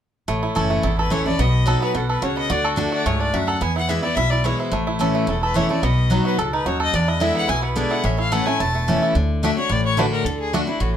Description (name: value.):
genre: bluegrass.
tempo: 217 BPM.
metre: 4/4.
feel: straight.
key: A major.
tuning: A4 = 440 Hz.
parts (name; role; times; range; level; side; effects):
bluegrass banjo; melody; 0.3-10.6 s; E3 to A4; -25 LUFS; right 3 dB; none.
picked steel-string acoustic guitar; accompaniment; 0.3-11.0 s; E2 to F#4; -22 LUFS; left 1 dB; none.
upright bass; bass; 0.3-11.0 s; E1 to E2; -23 LUFS; equal; none.
clear fiddle; melody; 0.8-10.9 s; E4 to A5; -24 LUFS; left 3 dB; none.
room: moderate studio ambience, RT60 0.5 s.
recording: minimal, uncompressed stereo recording.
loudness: -18 LUFS.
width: side -9 dB against mid.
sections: 0.3-9.2 A section; 9.2-11.0 B section.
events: none.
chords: 0.3 A; 1.4 B; 2.5 D; 3.6 E; 4.7 A; 5.8 B; 6.9 E7; 8.0 A; 9.2 D.